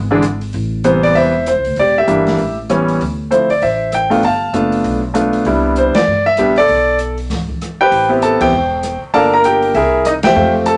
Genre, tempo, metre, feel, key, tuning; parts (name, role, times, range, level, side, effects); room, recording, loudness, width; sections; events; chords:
jazz piano trio; 196 BPM; 4/4; swing 61% on 8ths; C major; A4 = 440 Hz
upright bass; bass; 0.0-10.7 s; E1 to G2; -25 LUFS; equal
clear grand piano; melody; 0.1-10.8 s; C3 to Bb5; -14 LUFS; equal
open jazz drum kit; drums; 0.2-10.7 s; crash cymbal, hi-hat, kick drum, ride cymbal, rim click, snare drum; -26 LUFS; equal
moderate studio reverb, RT60 0.6 s; nothing above 10.4 kHz; -14 LUFS; mono
0.0-7.9 A section; 7.9-10.8 B section
band accent 5.9, 8.4, 10.2; stop 7.3-7.9
0.0 E7; 0.5 Am7; 1.8 Em7b5; 2.4 A7; 3.0 Dm9; 4.2 G7; 5.5 Cmaj7; 6.7 Bm7; 7.3 N.C.; 7.9 Am9; 9.1 Gm9; 9.7 C7b13